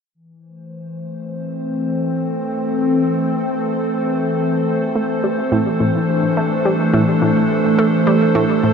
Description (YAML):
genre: ambient, sequencer-driven space music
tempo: 106 BPM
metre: 4/4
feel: straight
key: A minor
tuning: A4 = 440 Hz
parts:
  - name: evolving wavetable pad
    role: sustained chords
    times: 0.7-8.7 s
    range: E3 to C5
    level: -16 LUFS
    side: equal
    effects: chorus, built-in reverb, shimmer reverb
  - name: analog pluck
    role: riff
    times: 5.0-8.7 s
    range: A2 to A3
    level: -20 LUFS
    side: equal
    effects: chorus, tape echo, shimmer reverb
room: wet huge ambient reverb, RT60 8.0 s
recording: none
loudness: -15 LUFS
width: side -6 dB against mid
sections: 0.1-8.7 A section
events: filter sweep on ambient pad 0.1-8.7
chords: 0.1 Am